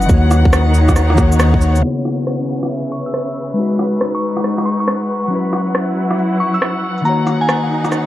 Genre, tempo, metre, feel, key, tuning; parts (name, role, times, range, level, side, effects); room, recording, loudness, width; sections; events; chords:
future garage; 138 BPM; 4/4; swing 65% on 16ths; C# dorian; A4 = 440 Hz
mellow electric guitar; accompaniment; 0.0-8.1 s; C#3 to C#5; -19 LUFS; left 2 dB; analog chorus, sidechain pumping, tape echo
clear studio string section; sustained chords; 0.0-8.1 s; C#3 to F#5; -20 LUFS; equal; sidechain pumping, low-pass filter
soft dub sub bass; bass; 0.0-1.8 s; D#2; -13 LUFS; equal; sidechain pumping
electronic shaker, rim click and cabasa; drums; 0.0-8.0 s; -21 LUFS; right 1 dB; overdrive, low-pass filter on perc, low-pass filter on snare, low-pass filter on room
drifting glass-harmonics texture; texture; 0.0-1.8 s; D#4 to D#5; -36 LUFS; right 1 dB
electronic kick drum; drums; 0.1-1.6 s; -14 LUFS; equal; overdrive
glassy synth bell; melody; 2.9-7.7 s; G#5 to E6; -23 LUFS; equal; chorus, vintage 12-bit sampler grit, analog delay
light reverb, digital ambience; vinyl crackle, low-pass filter; -13 LUFS; side -14 dB against mid
0.0-1.8 A section; 1.8-8.1 B section
band accent 1.4; filter sweep on drum 1.8-8.1; filter sweep on string section 1.8-8.1; filter sweep 1.8-8.1
0.1 D#m7; 1.8 C#m7; 3.6 G#m7; 5.3 F#7sus4; 7.1 D#m7